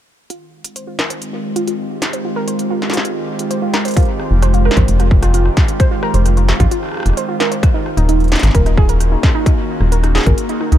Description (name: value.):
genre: IDM.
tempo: 131 BPM.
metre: 4/4.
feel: straight.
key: F minor.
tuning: A4 = 441 Hz.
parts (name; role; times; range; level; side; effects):
warbly tape-like pad; sustained chords; 0.8-10.8 s; Eb3 to G4; -21 LUFS; equal; chorus, built-in reverb, sidechain pumping.
warbly dusty pluck; arpeggios; 0.3-10.8 s; Eb4 to C5; -22 LUFS; right 2 dB; chorus, phaser, dub echo.
industrial drum kit; drums; 0.3-10.8 s; hi-hat, rim click, snare drum; -23 LUFS; equal; none.
electronic kick drum; drums; 4.0-10.4 s; none; -13 LUFS; equal; distortion.
rubbery square bass; bass; 4.3-10.8 s; Eb1 to Db2; -12 LUFS; equal; tube saturation.
room: digital ambience.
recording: dark, warm production.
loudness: -13 LUFS.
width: side -12 dB against mid.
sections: 0.3-4.0 A section; 4.0-10.8 B section.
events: filter sweep on ambient pad 0.3-4.0; filter sweep on synth pluck 0.3-4.0.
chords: 0.3 Fm9; 7.6 Ebm9.